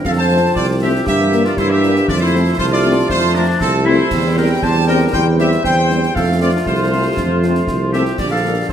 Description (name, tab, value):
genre	military-style march for wind band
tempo	118 BPM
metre	2/4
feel	straight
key	F major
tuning	A4 = 440 Hz
part	clear trombone section	sustained chords	0.0-8.7 s	D3 to C4	-24 LUFS	right 2 dB	none
part	mellow tuba	bass	0.0-8.7 s	Bb1 to G2	-16 LUFS	right 2 dB	none
part	concert snare drum, clash cymbals and concert bass drum	drums	0.0-8.7 s	none	-26 LUFS	left 1 dB	none
part	warm trumpet section	melody	0.1-8.7 s	A4 to A5	-20 LUFS	right 1 dB	none
part	warm woodwind section	second line	0.1-8.7 s	C4 to C5	-20 LUFS	left 2 dB	none
part	mellow French horn section	accompaniment	0.3-8.5 s	D3 to C4	-23 LUFS	left 4 dB	none
room	wet recital hall reverb, RT60 1.4 s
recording	none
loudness	-13 LUFS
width	side -9 dB against mid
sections	0.0-8.7 A section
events	none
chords	0.1 F; 1.1 Edim/G; 2.1 F; 4.1 C/E; 6.2 F; 8.2 Gm/Bb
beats	| 0.06 0.56 | 1.07 1.58 | 2.09 2.60 | 3.10 3.61 | 4.12 4.63 | 5.14 5.64 | 6.15 6.66 | 7.17 7.68 | 8.19 8.69